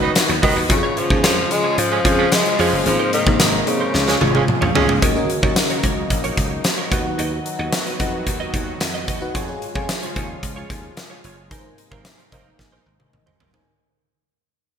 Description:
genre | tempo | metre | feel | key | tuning
1980s-style pop | 111 BPM | 4/4 | straight | Db major | A4 = 441 Hz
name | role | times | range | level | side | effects
FM electric piano with soft pad layer | accompaniment | 0.0-13.7 s | Ab2 to Ab5 | -24 LUFS | left 1 dB | chorus, tremolo
sweeping resonant pad | sustained chords | 0.0-13.7 s | C3 to Gb4 | -29 LUFS | right 1 dB | chorus
direct-recorded clean electric guitar | riff | 0.0-13.6 s | Eb4 to Eb5 | -29 LUFS | right 4 dB | ensemble chorus, digital delay
warm horn section | stabs | 0.0-4.9, 11.9-12.5 s | Eb3 to Cb5 | -24 LUFS | right 7 dB | none
dry thumbed slap bass | bass | 0.0-13.6 s | F1 to F3 | -25 LUFS | equal | none
huge arena drum kit | drums | 0.2-13.7 s | hi-hat, kick drum, snare drum, tambourine, toms | -20 LUFS | equal | gated reverb
raspy tenor saxophone | melody | 0.4-4.5 s | Db3 to Ab3 | -21 LUFS | left 2 dB | none
room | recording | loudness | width
moderate lush hall reverb, RT60 2.1 s | bright 1980s-style digital production | -16 LUFS | side -7 dB against mid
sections
0.0-5.0 A section; 5.0-13.7 B section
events
drum fill 3.9-5.0, 12.6-13.7; fade-out 5.0-13.7; band accent 11.5-13.7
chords
0.0 Cb; 0.7 Db; 2.9 Abadd9; 3.9 Db; 5.0 Ebm7; 6.9 Cb/Eb; 9.3 Db; 11.5 Abadd9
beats
0.16 | 0.70 1.24 1.78 2.32 | 2.86 3.40 3.94 4.48 | 5.02 5.56 6.11 6.64 | 7.19 7.73 8.27 8.81 | 9.35 9.89 10.43 10.97 | 11.51 12.05 12.59 13.13

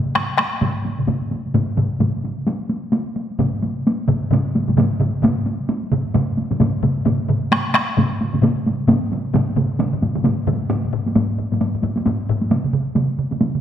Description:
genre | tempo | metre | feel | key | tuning
japanese traditional, taiko drum ensemble | 131 BPM | 4/4 | swing 60% on 16ths | none | none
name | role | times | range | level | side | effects
taiko ensemble | percussion | 0.1-13.5 s | none | -21 LUFS | equal | none
solo taiko drums | percussion | 0.2-13.6 s | none | -21 LUFS | right 3 dB | none
taiko ensemble | percussion | 0.2-12.4 s | none | -22 LUFS | left 4 dB | none
room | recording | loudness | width
wet scoring stage reverb, RT60 1.6 s | none | -17 LUFS | side -10 dB against mid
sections
0.0-10.7 A section; 10.7-13.6 B section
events
speeding up 0.0-13.6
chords
none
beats
0.16 0.62 1.09 | 1.55 2.01 2.47 2.93 | 3.39 3.85 4.31 4.77 | 5.23 5.69 6.15 6.61 | 7.06 7.52 7.97 8.43 | 8.89 9.34 9.79 10.25 | 10.70 11.15 11.61 12.06 | 12.51 12.96 13.41

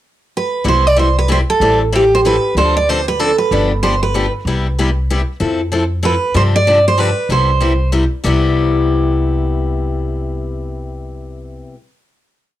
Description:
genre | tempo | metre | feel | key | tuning
acoustic string swing (jazz manouche) | 190 BPM | 3/4 | swing 60% on 8ths | C major | A4 = 441 Hz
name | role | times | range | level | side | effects
picked steel-string acoustic guitar | melody | 0.4-7.9 s | G4 to D5 | -14 LUFS | right 2 dB | cassette tape
picked steel-string acoustic guitar | accompaniment | 0.6-11.8 s | C3 to A4 | -19 LUFS | left 4 dB | cassette tape
upright bass | bass | 0.6-11.6 s | G1 to G2 | -17 LUFS | equal | none
room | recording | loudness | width
light reverb | home recording on cassette | -12 LUFS | side -13 dB against mid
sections
0.0-0.6 pickup bar; 0.6-8.2 A section; 8.2-10.1 final chord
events
none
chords
0.0 N.C.; 0.6 Cmaj7; 1.6 Am7; 2.6 Dm7; 3.5 G7; 4.5 Cmaj7; 5.4 Fmaj7; 6.3 G7sus4; 7.3 Cmaj7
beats
0.01 0.33 | 0.65 0.96 1.28 | 1.60 1.92 2.23 | 2.55 2.87 3.19 | 3.50 3.82 4.14 | 4.45 4.77 5.09 | 5.40 5.72 6.03 | 6.35 6.66 6.98 | 7.29 7.61 7.93 | 8.24 8.56 8.87 | 9.19 9.50 9.82

